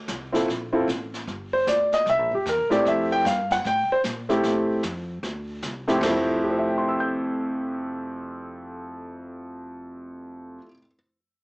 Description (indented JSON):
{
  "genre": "jazz piano trio",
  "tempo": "152 BPM",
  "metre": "4/4",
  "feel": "swing 64% on 8ths",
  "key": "F major",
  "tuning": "A4 = 440 Hz",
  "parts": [
    { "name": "upright bass", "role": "bass", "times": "0.0-10.6 s", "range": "F1 to Bb2", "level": "-36 LUFS", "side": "equal", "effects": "none" },
    { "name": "jazz brush drum kit", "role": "drums", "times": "0.1-6.3 s", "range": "brushed snare drum, crash cymbal, hi-hat, kick drum, snare drum, toms", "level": "-34 LUFS", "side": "equal", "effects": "none" },
    { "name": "clear concert grand piano", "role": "melody", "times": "0.3-10.9 s", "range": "F2 to G6", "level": "-22 LUFS", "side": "equal", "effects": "none" }
  ],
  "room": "moderate studio reverb, RT60 0.5 s",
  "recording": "home recording on cassette, small speaker sound",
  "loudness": "-22 LUFS",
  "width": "side -31 dB against mid",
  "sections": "0.0-6.0 A section; 6.0-9.2 B section",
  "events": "none",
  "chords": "0.0 Dm9 (rootless); 1.3 G5; 2.1 C7; 2.9 Fmaj7"
}